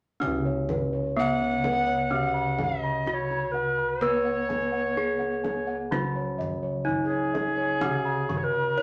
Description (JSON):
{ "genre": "Javanese gamelan", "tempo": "63 BPM", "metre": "4/4", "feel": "straight", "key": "C# slendro", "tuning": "A4 = 439 Hz", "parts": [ { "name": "gamelan-type bronze metallophone", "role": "melody", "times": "0.2-8.8 s", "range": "B3-40c to C#5", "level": "-33 LUFS", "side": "equal", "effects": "none" }, { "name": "gamelan-type bronze metallophone", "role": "accompaniment", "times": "0.2-8.8 s", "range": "C#3 to B3-40c", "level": "-36 LUFS", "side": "equal", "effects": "none" }, { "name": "gamelan-type bossed gongs", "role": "bass", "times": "0.2-8.8 s", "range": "C#2 to B4-40c", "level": "-36 LUFS", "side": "equal", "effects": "none" }, { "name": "kendang", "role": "percussion", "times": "0.2-8.5 s", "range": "none", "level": "-38 LUFS", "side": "equal", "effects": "none" }, { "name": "gamelan-type bossed gongs", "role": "arpeggios", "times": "0.5-8.8 s", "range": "B4-40c to C#6", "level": "-36 LUFS", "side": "equal", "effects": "none" }, { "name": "breathy mellow alto recorder", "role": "second line", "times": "1.2-8.8 s", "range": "G#4+22c to F#5", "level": "-30 LUFS", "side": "equal", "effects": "none" } ], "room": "wet studio reverb, RT60 0.7 s", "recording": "none", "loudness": "-27 LUFS", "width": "mono", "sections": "0.2-8.8 A section", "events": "none", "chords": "none" }